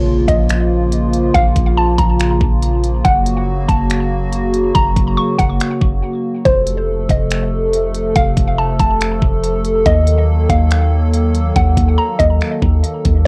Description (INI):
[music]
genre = hip hop, atmospheric cloud-rap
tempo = 141 BPM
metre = 4/4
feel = half-time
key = unclear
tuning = A4 = 440 Hz
[part]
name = mallet-like synth pluck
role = melody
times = 0.0-12.8 s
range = C5 to Db6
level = -22 LUFS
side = equal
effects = chorus, phaser, low-pass filter, cassette tape, tape echo
[part]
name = hollow soft pad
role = sustained chords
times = 0.0-13.2 s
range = C3 to A4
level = -21 LUFS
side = equal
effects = chorus, phaser, sidechain pumping, cassette tape
[part]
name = soft 808-style bass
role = bass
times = 0.0-13.3 s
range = F1 to Eb2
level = -19 LUFS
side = equal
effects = tube saturation
[part]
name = impact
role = sound effects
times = 0.0-1.3 s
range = none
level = barely audible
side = none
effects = none
[part]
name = trap drum kit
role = drums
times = 0.3-13.1 s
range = finger snaps, hi-hat, kick drum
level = -20 LUFS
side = equal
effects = overdrive, cassette tape
[sound]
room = light reverb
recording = home recording on cassette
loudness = -15 LUFS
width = mono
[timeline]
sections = 0.0-13.3 A section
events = impact 0.0-1.3; break 6.0-6.5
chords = 0.0 Bbm; 3.0 Gb; 6.5 F; 9.9 Ebm